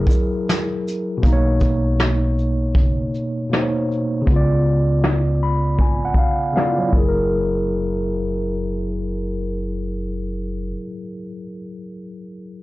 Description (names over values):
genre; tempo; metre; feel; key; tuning
lo-fi hip hop; 79 BPM; 4/4; swing 64% on 16ths; unclear; A4 = 440 Hz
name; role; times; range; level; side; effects
vibraphone with soft mallets; melody; 0.0-0.4, 6.9-9.6 s; A#4; -29 LUFS; left 2 dB; low-pass filter
tine electric piano; accompaniment; 0.0-12.6 s; B2 to B5; -22 LUFS; equal; medium stereo tremolo, cassette tape, low-pass filter
upright bass; bass; 0.0-10.7 s; F#1 to C#2; -22 LUFS; equal; none
vintage brush drum kit; drums; 0.1-7.2 s; hi-hat, kick drum, shaker, snare drum; -19 LUFS; equal; none
room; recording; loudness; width
little or no reverb; low-pass filter; -18 LUFS; side -18 dB against mid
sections
0.0-7.3 A section; 7.3-10.3 B section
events
filter sweep 0.0-7.3; tine electric piano fill 5.0-7.3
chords
0.0 F#9; 1.2 Bmaj9; 4.3 C#7b9; 6.9 F#9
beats
0.47 | 1.23 1.99 2.75 3.51 | 4.27 5.03 5.79 6.55 | 7.31 8.07 8.83 9.59